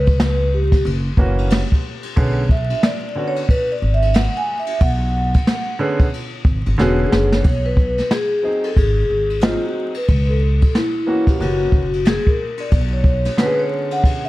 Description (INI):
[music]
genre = hip hop, jazz-hop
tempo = 91 BPM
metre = 4/4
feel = swing 61% on 16ths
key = B dorian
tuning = A4 = 440 Hz
[part]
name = vibraphone with soft mallets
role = melody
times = 0.0-14.3 s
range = E4 to G#5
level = -21 LUFS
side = left 1 dB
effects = none
[part]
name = upright bass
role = bass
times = 0.0-13.3 s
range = E1 to C#2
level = -19 LUFS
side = equal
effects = none
[part]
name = jazz brush drum kit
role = drums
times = 0.1-14.2 s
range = hi-hat, kick drum, ride cymbal, snare drum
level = -18 LUFS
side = equal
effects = none
[part]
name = warm upright piano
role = accompaniment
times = 1.2-14.3 s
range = D3 to G#4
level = -23 LUFS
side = right 2 dB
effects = none
[sound]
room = small room ambience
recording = vinyl crackle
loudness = -15 LUFS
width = side -17 dB against mid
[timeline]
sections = 0.0-7.4 A section; 7.4-14.3 B section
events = vibraphone solo 0.0-7.4; drum fill 6.8-7.4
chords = 0.0 C#7(b5, no3); 0.9 F#7; 2.2 Bm69; 7.4 B5; 8.8 G#7; 10.1 A6b9/C#; 11.4 F#7; 12.7 Bm69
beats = 0.19 0.85 1.51 | 2.17 2.83 3.49 4.15 | 4.81 5.47 6.13 6.79 | 7.45 8.11 8.77 9.42 | 10.08 10.74 11.40 12.06 | 12.72 13.38 14.04